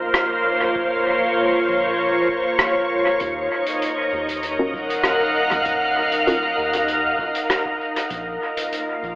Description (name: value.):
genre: ambient dub.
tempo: 98 BPM.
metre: 4/4.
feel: straight.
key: Bb minor.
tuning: A4 = 438 Hz.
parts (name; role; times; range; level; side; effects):
soft additive organ-like pad; sustained chords; 0.0-9.2 s; Bb3 to Gb5; -19 LUFS; equal; ensemble chorus, built-in reverb.
soft dub sub bass; bass; 0.0-9.2 s; Eb1 to Eb2; -39 LUFS; equal; none.
soft-mallet drum kit; drums; 0.1-8.8 s; hi-hat, rim click, toms; -25 LUFS; equal; dub echo.
electronic kick drum; drums; 0.8-8.2 s; none; -44 LUFS; equal; none.
filtered dub chord stab; stabs; 4.6-6.4 s; Db4 to Bb4; -26 LUFS; equal; phaser, ensemble chorus, dub echo.
room: moderate plate reverb, RT60 1.9 s, studio ambience.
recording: echo-heavy mix, telephone sound.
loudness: -18 LUFS.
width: side -20 dB against mid.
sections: 0.0-9.2 A section.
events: none.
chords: 0.0 Bbm; 3.2 Ebm7; 8.1 Bb5.